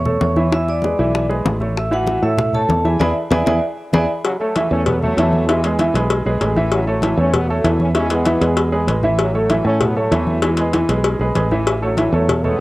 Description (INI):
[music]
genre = latin, salsa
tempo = 194 BPM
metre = 4/4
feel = straight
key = A major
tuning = A4 = 440 Hz
[part]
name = vibraphone with medium hard mallets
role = melody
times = 0.0-4.0 s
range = F#4 to E6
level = -21 LUFS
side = equal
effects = cassette tape, analog delay
[part]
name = fingered electric bass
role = bass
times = 0.0-12.6 s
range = A1 to A2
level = -20 LUFS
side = equal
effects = none
[part]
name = clear concert grand piano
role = accompaniment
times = 0.1-12.6 s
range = E3 to E5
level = -19 LUFS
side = right 1 dB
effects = cassette tape
[part]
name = bongos and cowbell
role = percussion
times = 0.1-12.4 s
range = none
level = -22 LUFS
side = left 3 dB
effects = none
[part]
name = congas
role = percussion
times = 0.1-12.6 s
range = none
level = -26 LUFS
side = equal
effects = none
[part]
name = clear trombone section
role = melody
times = 4.3-12.6 s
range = C#3 to C#4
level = -23 LUFS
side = equal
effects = cassette tape
[sound]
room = light reverb, small room ambience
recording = home recording on cassette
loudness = -15 LUFS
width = side -18 dB against mid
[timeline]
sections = 0.0-4.2 A section; 4.2-12.6 B section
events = band accent 3.0-4.2; drum fill 3.6-4.2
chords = 0.0 A; 0.5 E7; 1.8 A6; 3.0 E7; 4.2 A6; 5.5 E; 6.7 A6; 8.0 E; 9.2 A6; 10.4 E; 11.7 A6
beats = 0.21 | 0.52 0.83 1.14 1.45 | 1.76 2.07 2.38 2.69 | 3.00 3.31 3.62 3.93 | 4.24 4.55 4.86 5.17 | 5.48 5.79 6.10 6.41 | 6.72 7.03 7.33 7.64 | 7.95 8.26 8.57 8.88 | 9.19 9.50 9.81 10.12 | 10.43 10.74 11.04 11.35 | 11.66 11.97 12.28 12.59